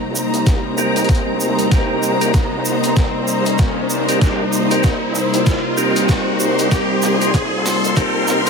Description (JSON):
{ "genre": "glitch hop", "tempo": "96 BPM", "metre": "4/4", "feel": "swing 59% on 16ths", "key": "C minor", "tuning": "A4 = 441 Hz", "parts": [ { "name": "warbly tape-like pad", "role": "sustained chords", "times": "0.0-8.5 s", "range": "C3 to F4", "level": "-21 LUFS", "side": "equal", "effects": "chorus, built-in reverb, sidechain pumping" }, { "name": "wobble bass", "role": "bass", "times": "0.0-8.5 s", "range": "Bb1 to F2", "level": "-29 LUFS", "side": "right 1 dB", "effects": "none" }, { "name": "riser", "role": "sound effects", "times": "0.0-8.5 s", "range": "none", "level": "-24 LUFS", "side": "equal", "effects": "none" }, { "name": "warm studio string section", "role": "texture", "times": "0.0-8.5 s", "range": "Eb4 to C6", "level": "-22 LUFS", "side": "left 2 dB", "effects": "sidechain pumping" }, { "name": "tube shaker", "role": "percussion", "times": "0.2-8.5 s", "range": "none", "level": "-27 LUFS", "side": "right 4 dB", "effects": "none" }, { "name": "boom bap sampler-style drum kit", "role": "drums", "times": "0.3-8.5 s", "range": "hi-hat, snare drum", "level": "-27 LUFS", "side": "left 1 dB", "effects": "overdrive, high-pass filter on hats, high-pass filter on snare, high-pass filter on room" }, { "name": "electronic kick drum", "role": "drums", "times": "0.5-8.1 s", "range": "none", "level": "-15 LUFS", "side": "equal", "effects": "none" }, { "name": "percussive tonewheel organ", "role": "stabs", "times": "0.8-8.5 s", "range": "C4 to Bb4", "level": "-21 LUFS", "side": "equal", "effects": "chorus vibrato, fast rotary speaker, sidechain pumping, low-pass filter, dub echo" } ], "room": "moderate lush hall reverb, RT60 1.6 s", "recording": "high-pass filter", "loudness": "-14 LUFS", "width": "side -5 dB against mid", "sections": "0.0-8.5 A section", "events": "build-up 0.0-8.5; drum fill 0.0-8.5; riser 0.0-8.5", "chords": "0.0 Cm7", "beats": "0.47 1.09 | 1.72 2.34 2.97 3.59 | 4.22 4.84 5.47 6.09 | 6.72 7.34 7.97" }